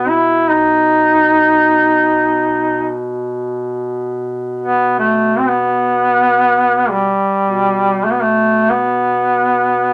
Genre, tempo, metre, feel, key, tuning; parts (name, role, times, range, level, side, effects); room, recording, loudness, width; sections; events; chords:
caucasian folk, Caucasian lament; free time; A4 = 440 Hz
clear duduk; melody; 0.0-9.9 s; G3 to E4; -14 LUFS; equal
mellow duduk; drone; 0.0-9.9 s; B2; -25 LUFS; equal
moderate studio reverb, RT60 0.6 s; -15 LUFS; mono
0.0-9.9 A section